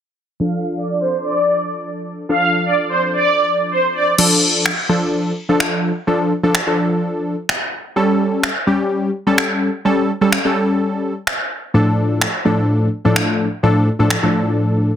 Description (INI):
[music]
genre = dance-pop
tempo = 127 BPM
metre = 4/4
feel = straight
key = D harmonic minor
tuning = A4 = 440 Hz
[part]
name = filtered supersaw swell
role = melody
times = 0.4-4.0 s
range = C5 to F5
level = -16 LUFS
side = right 1 dB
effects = phaser, low-pass filter, ping-pong delay
[part]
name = warm analog keys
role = accompaniment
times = 0.4-14.9 s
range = A2 to A4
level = -16 LUFS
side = equal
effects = chorus, low-pass filter
[part]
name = house drum kit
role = drums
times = 4.2-14.2 s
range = crash cymbal, finger snaps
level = -18 LUFS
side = equal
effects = overdrive, soft clipping on snare
[sound]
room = moderate small room reverb, RT60 0.5 s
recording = dense, heavily limited modern master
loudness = -15 LUFS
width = side -9 dB against mid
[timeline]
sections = 0.4-4.2 A section; 4.2-15.0 B section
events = filter sweep 0.4-4.2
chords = 0.4 Dm; 8.0 A7; 11.7 Dm/A